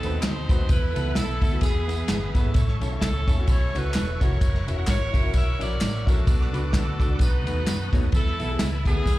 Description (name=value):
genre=uptempo gospel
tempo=129 BPM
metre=4/4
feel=swing 57% on 8ths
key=unclear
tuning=A4 = 440 Hz
part: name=edgy saxophone section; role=melody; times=0.0-9.2 s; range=B3 to E5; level=-31 LUFS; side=equal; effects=tape echo
part: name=warm grand piano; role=accompaniment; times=0.0-9.2 s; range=A2 to F#5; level=-34 LUFS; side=left 3 dB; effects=slapback echo
part: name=bright tonewheel organ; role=sustained chords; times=0.0-9.2 s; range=G#4 to E6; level=-38 LUFS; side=right 3 dB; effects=slow rotary speaker, chorus vibrato
part: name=fingered electric bass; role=bass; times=0.0-9.2 s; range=E1 to F#2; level=-26 LUFS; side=equal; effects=none
part: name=natural country drum kit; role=drums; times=0.0-9.2 s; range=kick drum, ride cymbal, snare drum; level=-23 LUFS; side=equal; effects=none
part: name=tambourine and handclaps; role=percussion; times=0.0-9.2 s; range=none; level=-38 LUFS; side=right 1 dB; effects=none
room=studio ambience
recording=live gig heard through the venue's PA, club reverb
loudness=-21 LUFS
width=side -17 dB against mid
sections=0.0-9.2 A section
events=none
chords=0.0 B7b9; 0.7 Esus4; 1.6 E; 2.5 A; 4.4 F#7; 6.3 Bm; 7.2 B7; 8.1 Esus4